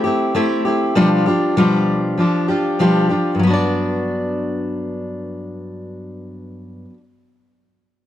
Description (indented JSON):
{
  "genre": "pop",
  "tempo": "98 BPM",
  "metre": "4/4",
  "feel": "swing 60% on 16ths",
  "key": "G major",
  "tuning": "A4 = 440 Hz",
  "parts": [
    { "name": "fingerpicked steel-string acoustic guitar", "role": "accompaniment", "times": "0.0-7.0 s", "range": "G2 to D5", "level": "-16 LUFS", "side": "left 1 dB", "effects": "none" }
  ],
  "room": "light reverb",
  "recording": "worn, warbling old tape, cassette tape, warbly pitch drift",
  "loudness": "-15 LUFS",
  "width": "side -12 dB against mid",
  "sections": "0.0-3.4 A section; 3.4-5.9 B section",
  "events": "none",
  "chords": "0.0 Am7; 1.0 G7/B; 3.4 Gmaj7",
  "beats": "0.36 | 0.97 1.58 2.19 2.81 | 3.42 4.03 4.65 5.26"
}